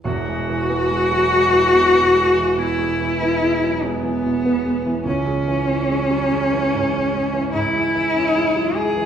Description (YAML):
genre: classical, romantic duo for cello and grand piano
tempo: 49 BPM (dotted quarters)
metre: 12/8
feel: rubato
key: E major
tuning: A4 = 442 Hz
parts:
  - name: warm cello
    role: melody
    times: 0.0-9.1 s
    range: B3 to G#4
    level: -17 LUFS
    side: left 1 dB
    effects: none
  - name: warm concert grand piano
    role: accompaniment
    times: 0.0-9.1 s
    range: E1 to C#4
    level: -23 LUFS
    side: right 2 dB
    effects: none
room: wet recital hall reverb, RT60 1.6 s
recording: heard from further back in the room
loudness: -16 LUFS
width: side -8 dB against mid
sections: 0.0-9.1 A section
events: none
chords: 0.0 E; 5.1 C#m